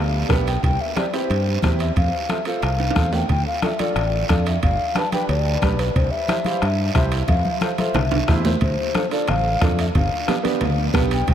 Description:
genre	latin, cumbia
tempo	180 BPM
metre	4/4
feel	straight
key	D minor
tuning	A4 = 440 Hz
part	fingered electric bass	bass	0.0-11.3 s	G1 to G2	-22 LUFS	equal	none
part	clear upright piano	accompaniment	0.3-11.2 s	B3 to C5	-26 LUFS	right 4 dB	analog chorus
part	bombo	percussion	0.3-11.3 s	none	-24 LUFS	equal	none
part	congas	percussion	0.3-11.3 s	none	-29 LUFS	left 2 dB	none
part	guiro	percussion	0.3-11.3 s	none	-34 LUFS	right 6 dB	none
part	timbales	percussion	0.3-11.3 s	none	-30 LUFS	right 5 dB	none
part	mellow hollow alto ocarina	melody	0.5-11.3 s	B4 to A5	-25 LUFS	left 2 dB	none
room	moderate huge ambient reverb, RT60 6.9 s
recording	dreamy mix soaked in reverb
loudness	-18 LUFS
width	side -10 dB against mid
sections	0.0-8.6 A section; 8.6-11.3 A section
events	drum fill 2.8-3.3, 7.3-8.6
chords	0.0 G; 0.6 C; 2.0 F; 3.3 Dm; 4.6 G7; 6.0 C; 7.3 F; 8.0 C; 8.6 Dm; 9.9 G7

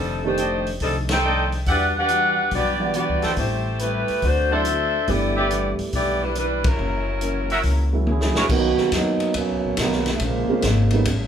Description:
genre	jazz, big band swing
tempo	141 BPM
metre	4/4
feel	swing 67% on 8ths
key	unclear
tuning	A4 = 440 Hz
part	dark saxophone section	melody	0.0-8.1 s	F#3 to G5	-22 LUFS	left 1 dB	none
part	vintage hollow-body jazz guitar	accompaniment	0.0-11.3 s	F2 to B#4	-32 LUFS	left 4 dB	none
part	upright bass	bass	0.0-11.3 s	F1 to F#2	-25 LUFS	equal	none
part	dark upright piano	accompaniment	0.2-11.1 s	Eb3 to F#5	-27 LUFS	right 4 dB	none
part	warm trumpet section	stabs	0.4-8.5 s	F#4 to G5	-26 LUFS	right 1 dB	none
part	vintage drum kit	drums	0.4-11.2 s	crash cymbal, hi-hat, kick drum, ride cymbal, snare drum, toms	-27 LUFS	equal	none
part	bright trombone section	second line	8.1-11.1 s	C#3 to Ab4	-22 LUFS	right 4 dB	none
room	moderate large studio reverb, RT60 1.0 s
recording	band playing live in one room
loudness	-19 LUFS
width	side -8 dB against mid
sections	0.0-8.5 A section; 8.5-11.3 B section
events	band accent 1.0, 6.6; drum fill 8.1-8.5; trombone section solo 8.5-11.3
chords	0.0 F13; 1.7 Em9; 3.4 Am7; 4.2 D7; 5.1 G6; 6.8 F#7; 8.5 Bmaj7; 10.2 A#m9

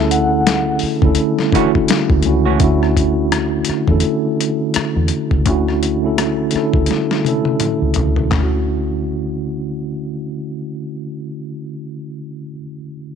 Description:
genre	R&B, neo-soul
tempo	84 BPM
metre	4/4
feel	swing 57% on 16ths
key	D major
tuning	A4 = 439 Hz
part	mellow tine electric piano	accompaniment	0.0-13.2 s	D3 to A4	-18 LUFS	right 1 dB	medium stereo tremolo
part	deep dub fingered electric bass	bass	0.0-12.5 s	C#2 to E2	-19 LUFS	equal	tube saturation
part	vibraphone with soft mallets	melody	0.1-0.8 s	F#5	-21 LUFS	left 2 dB	tape echo
part	dusty soul sampler-style drum kit	drums	0.1-8.5 s	handclaps, hi-hat, kick drum, rim click, snare drum, toms	-19 LUFS	left 3 dB	overdrive
part	hollow-body jazz guitar	second line	1.5-2.6 s	E3 to F#4	-21 LUFS	right 14 dB	none
room	light reverb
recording	1960s-style stereo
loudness	-14 LUFS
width	side -7 dB against mid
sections	0.0-2.6 A section; 2.6-8.3 B section; 8.3-11.2 C section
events	drum fill 6.9-8.3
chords	0.0 Dmaj9

